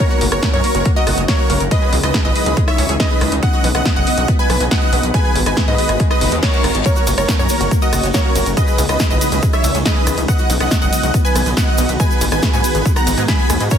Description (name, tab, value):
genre	uplifting trance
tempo	140 BPM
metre	4/4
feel	straight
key	B major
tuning	A4 = 443 Hz
part	big supersaw lead	melody	0.0-13.8 s	F#4 to B5	-20 LUFS	right 1 dB	sidechain pumping, digital delay
part	wide unison pluck	second line	0.0-13.8 s	C#5 to B5	-26 LUFS	equal	sidechain pumping, digital delay
part	shimmering ambient pad	sustained chords	0.0-13.8 s	C#3 to F#4	-23 LUFS	equal	chorus, built-in reverb, sidechain pumping
part	analog pluck	arpeggios	0.0-13.8 s	G#3 to D#5	-25 LUFS	left 2 dB	wide subtle chorus, sidechain pumping, digital delay
part	electronic kick drum	drums	0.0-13.8 s	none	-17 LUFS	equal	overdrive
part	punchy analog drum machine	drums	0.0-13.8 s	hi-hat, ride cymbal, rim click, snare drum	-22 LUFS	equal	sidechain pumping on hats, sidechain pumping on cymbals
part	gritty driven synth bass	bass	0.2-13.7 s	F#1 to G#2	-20 LUFS	equal	sidechain pumping
part	reverse cymbal	sound effects	6.2-6.9 s	none	-26 LUFS	left 6 dB	none
part	tube shaker	percussion	6.9-13.8 s	none	-28 LUFS	left 2 dB	none
room	light reverb, digital ambience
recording	dense, heavily limited modern master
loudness	-13 LUFS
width	side -8 dB against mid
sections	0.0-13.8 A section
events	reverse cymbal 6.2-6.9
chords	0.0 F#; 1.7 C#madd9; 3.4 B; 5.1 G#m7; 6.9 F#; 8.6 C#madd9; 10.3 B; 12.0 G#m7